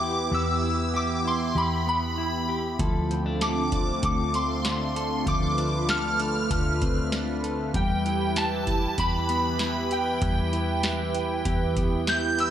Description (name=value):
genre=dream pop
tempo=97 BPM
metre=4/4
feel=straight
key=unclear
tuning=A4 = 440 Hz
part: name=shimmering bell with halo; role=melody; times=0.0-12.5 s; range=G5 to G6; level=-28 LUFS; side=equal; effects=ensemble chorus, diffuse ambient delay
part: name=phased analog pad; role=sustained chords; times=0.0-12.5 s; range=D3 to B4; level=-30 LUFS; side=right 2 dB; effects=phaser, chorus
part: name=mellow electric guitar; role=arpeggios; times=0.0-12.5 s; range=F3 to A4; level=-31 LUFS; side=left 2 dB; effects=lush chorus, diffuse ambient delay
part: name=vintage muted picked electric bass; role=bass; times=0.0-12.5 s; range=D2 to E2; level=-30 LUFS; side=equal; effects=none
part: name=booming analog drum machine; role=drums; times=2.8-12.5 s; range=hi-hat, kick drum, snare drum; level=-29 LUFS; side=equal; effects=none
room=wet plate reverb, RT60 2.1 s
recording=dreamy mix soaked in reverb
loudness=-23 LUFS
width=side -10 dB against mid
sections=0.0-12.5 A section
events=none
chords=0.0 Em; 2.8 Dm7; 7.7 Em